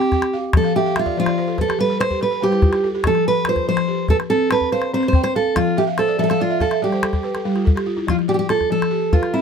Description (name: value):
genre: west african traditional, West African string and xylophone music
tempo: 96 BPM (dotted quarters)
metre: 12/8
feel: straight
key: F lydian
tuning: A4 = 439 Hz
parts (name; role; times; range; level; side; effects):
- fingerpicked steel-string acoustic guitar; melody; 0.0-9.4 s; E4 to C5; -19 LUFS; right 3 dB; none
- balafon; arpeggios; 0.0-9.4 s; F3 to A5; -21 LUFS; left 2 dB; none
- calabash; percussion; 0.0-9.3 s; none; -19 LUFS; left 1 dB; none
room: little or no reverb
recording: close, detailed microphones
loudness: -16 LUFS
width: side -6 dB against mid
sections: 0.0-9.4 A section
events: balafon fill 0.6-3.1, 5.8-8.1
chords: 0.0 C5; 0.5 Fmaj13; 1.8 N.C.; 3.1 F5; 4.3 C5; 5.6 Fmaj13; 6.8 N.C.; 8.1 F